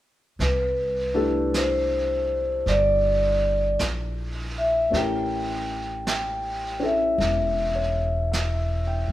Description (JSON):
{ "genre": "jazz ballad", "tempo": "53 BPM", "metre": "4/4", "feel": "swing 66% on 8ths", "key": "C major", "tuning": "A4 = 440 Hz", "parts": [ { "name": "vibraphone with medium mallets", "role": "melody", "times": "0.4-9.0 s", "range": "B4 to G5", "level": "-24 LUFS", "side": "equal", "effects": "none" }, { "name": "upright bass", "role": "bass", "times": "0.4-9.1 s", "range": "E1 to A2", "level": "-28 LUFS", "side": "equal", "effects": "none" }, { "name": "vintage brush drum kit", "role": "drums", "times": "0.4-9.1 s", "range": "brushed snare drum, hi-hat, snare drum", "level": "-33 LUFS", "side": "right 2 dB", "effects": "none" }, { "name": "warm concert grand piano", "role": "accompaniment", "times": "1.1-9.1 s", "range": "A3 to G5", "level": "-30 LUFS", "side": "left 2 dB", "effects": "none" } ], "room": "moderate stone room reverb, RT60 1.4 s", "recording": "band playing live in one room", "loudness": "-22 LUFS", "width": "side -14 dB against mid", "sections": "0.4-9.1 A section", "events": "none", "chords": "0.4 Cmaj13; 4.9 A7b9", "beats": "| 0.38 1.52 2.65 3.78 | 4.92 6.05 7.18 8.31" }